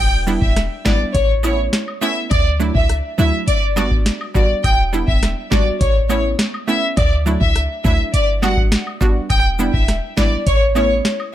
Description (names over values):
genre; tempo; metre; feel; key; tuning
dancehall; 103 BPM; 4/4; straight; E dorian; A4 = 441 Hz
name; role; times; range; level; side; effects
rich studio violin section; melody; 0.0-10.9 s; C#5 to G5; -20 LUFS; left 1 dB; tape echo
clean 808-style bass; bass; 0.0-11.0 s; E1 to D2; -19 LUFS; equal; none
analog pluck; accompaniment; 0.3-10.9 s; F#3 to F#4; -23 LUFS; right 3 dB; chorus
cabasa and woodblock; percussion; 0.3-11.3 s; none; -32 LUFS; left 2 dB; none
booming analog drum machine; drums; 0.4-11.2 s; hi-hat, kick drum, rim click, snare drum; -17 LUFS; equal; none
room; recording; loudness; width
digital ambience; none; -14 LUFS; side -12 dB against mid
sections
0.0-11.3 A section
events
none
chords
0.0 Em7; 1.1 Aadd9; 2.3 Dadd9; 3.5 Gmaj7; 4.6 Em7; 5.8 Aadd9; 7.0 Dadd9; 8.1 Gmaj7; 9.3 Em7; 10.5 Aadd9